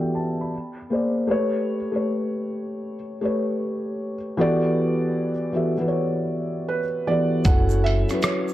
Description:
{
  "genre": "lo-fi hip hop",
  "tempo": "78 BPM",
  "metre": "4/4",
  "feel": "swing 66% on 16ths",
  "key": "E dorian",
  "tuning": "A4 = 440 Hz",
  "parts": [
    { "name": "felt-muted upright piano", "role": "accompaniment", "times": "0.0-8.5 s", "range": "E3 to B5", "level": "-22 LUFS", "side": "left 1 dB", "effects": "cassette tape, low-pass filter" },
    { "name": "felt-muted upright piano", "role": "melody", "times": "6.7-8.5 s", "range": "B4 to F#5", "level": "-26 LUFS", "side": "right 5 dB", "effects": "none" },
    { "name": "lo-fi sampler-style drum kit", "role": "drums", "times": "7.4-8.5 s", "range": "hi-hat, kick drum, rim click", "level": "-21 LUFS", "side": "equal", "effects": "none" },
    { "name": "upright bass", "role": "bass", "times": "7.5-8.0 s", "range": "F#1", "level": "-22 LUFS", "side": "equal", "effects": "none" },
    { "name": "egg shaker", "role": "percussion", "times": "7.5-8.5 s", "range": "none", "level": "-42 LUFS", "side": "right 10 dB", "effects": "none" }
  ],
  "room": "moderate spring reverb, RT60 2.9 s",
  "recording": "dark, warm production",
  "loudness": "-21 LUFS",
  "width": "side -14 dB against mid",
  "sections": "0.0-7.5 A section; 7.5-8.5 B section",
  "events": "none",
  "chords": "0.0 Em11; 0.5 A#9; 1.3 A9; 4.4 Em11; 7.5 F#m7"
}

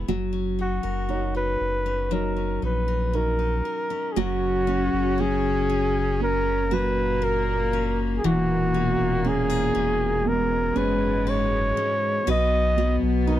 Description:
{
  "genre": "pop ballad",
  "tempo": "59 BPM",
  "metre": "4/4",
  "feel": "straight",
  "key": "unclear",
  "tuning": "A4 = 440 Hz",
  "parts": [
    { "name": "warm baby grand piano", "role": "accompaniment", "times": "0.0-13.4 s", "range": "B2 to C#5", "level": "-28 LUFS", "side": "right 6 dB", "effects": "none" },
    { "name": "picked steel-string acoustic guitar", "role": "arpeggios", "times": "0.0-13.4 s", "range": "G#2 to B4", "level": "-32 LUFS", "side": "left 13 dB", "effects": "none" },
    { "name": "warm sub bass", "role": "bass", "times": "0.0-13.4 s", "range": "E1 to B1", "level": "-27 LUFS", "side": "equal", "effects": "none" },
    { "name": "warm flugelhorn", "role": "melody", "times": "0.6-13.4 s", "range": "F#4 to D#5", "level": "-25 LUFS", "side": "equal", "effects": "none" },
    { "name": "warm studio cello section", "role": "second line", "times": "4.2-13.4 s", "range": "G#2 to C#4", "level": "-28 LUFS", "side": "left 4 dB", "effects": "none" }
  ],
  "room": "light reverb",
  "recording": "dry, close 1970s-style studio recording",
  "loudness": "-21 LUFS",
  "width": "side -12 dB against mid",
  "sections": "0.0-4.2 A section; 4.2-13.4 B section",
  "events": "none",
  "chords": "0.1 F#6; 4.2 F#; 8.2 E6; 12.3 B"
}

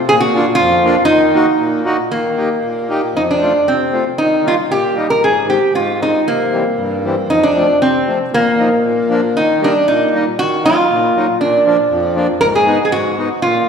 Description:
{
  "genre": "alpine folk, alpine dance band",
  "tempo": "117 BPM",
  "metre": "2/4",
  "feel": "straight",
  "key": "Eb major, Eb harmonic minor from 10.4 s",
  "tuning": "A4 = 440 Hz",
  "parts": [
    { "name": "lap resonator guitar", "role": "melody", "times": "0.1-13.7 s", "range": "Bb3 to Bb4", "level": "-13 LUFS", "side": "right 1 dB", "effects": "none" },
    { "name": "accordion", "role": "accompaniment", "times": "0.1-13.7 s", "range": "F2 to G4", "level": "-18 LUFS", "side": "left 1 dB", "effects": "none" }
  ],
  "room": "wet recital hall reverb, RT60 1.6 s",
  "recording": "heard from further back in the room",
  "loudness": "-12 LUFS",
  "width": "side -6 dB against mid",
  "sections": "0.0-2.1 A section; 2.1-10.4 B section; 10.4-13.7 A section",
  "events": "none",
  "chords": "0.1 Bb; 1.1 Ebm; 2.1 Eb; 3.2 F; 4.2 Eb; 5.2 Ab; 6.2 C7; 7.3 F; 8.3 Bbsus4; 8.8 Bb; 9.3 Eb; 10.4 Ebm; 11.4 Bb; 12.4 Abm"
}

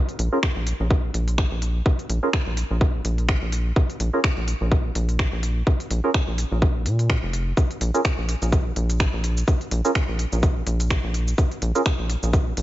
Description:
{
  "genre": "minimal techno",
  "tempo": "126 BPM",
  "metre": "4/4",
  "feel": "swing 56% on 16ths",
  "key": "Bb minor",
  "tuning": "A4 = 438 Hz",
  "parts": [
    { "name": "minimal click drum kit", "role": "drums", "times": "0.1-12.6 s", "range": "finger snaps, hi-hat, shaker", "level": "-28 LUFS", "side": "right 1 dB", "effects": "none" },
    { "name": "rubbery square bass", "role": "bass", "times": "0.2-12.6 s", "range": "F1 to Bb2", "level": "-23 LUFS", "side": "equal", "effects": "sidechain pumping" },
    { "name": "percussive organ stab", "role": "stabs", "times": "0.3-11.8 s", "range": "Db4 to Bb4", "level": "-26 LUFS", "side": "right 2 dB", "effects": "wide subtle chorus, cassette tape, digital delay" },
    { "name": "electronic kick drum", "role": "drums", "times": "0.4-12.4 s", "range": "none", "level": "-22 LUFS", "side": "equal", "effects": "none" }
  ],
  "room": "digital ambience",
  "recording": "nothing above 7.6 kHz",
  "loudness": "-20 LUFS",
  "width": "side -15 dB against mid",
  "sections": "0.0-12.6 A section",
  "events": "none",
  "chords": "none"
}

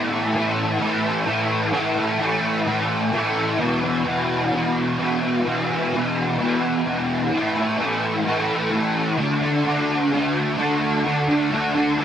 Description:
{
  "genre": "rock",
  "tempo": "129 BPM",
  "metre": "4/4",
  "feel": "straight",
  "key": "unclear",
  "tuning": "A4 = 440 Hz",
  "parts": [
    { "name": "fuzz guitar", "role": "solo", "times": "0.0-12.0 s", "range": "E2 to D4", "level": "-19 LUFS", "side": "equal", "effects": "distortion, ensemble chorus" }
  ],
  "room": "moderate huge ambient reverb, RT60 3.8 s",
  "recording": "none",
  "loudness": "-19 LUFS",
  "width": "side -9 dB against mid",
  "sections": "0.0-11.0 A section; 11.0-12.0 B section",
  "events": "none",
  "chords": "0.0 A5; 3.6 E5; 7.3 A5; 9.2 D5"
}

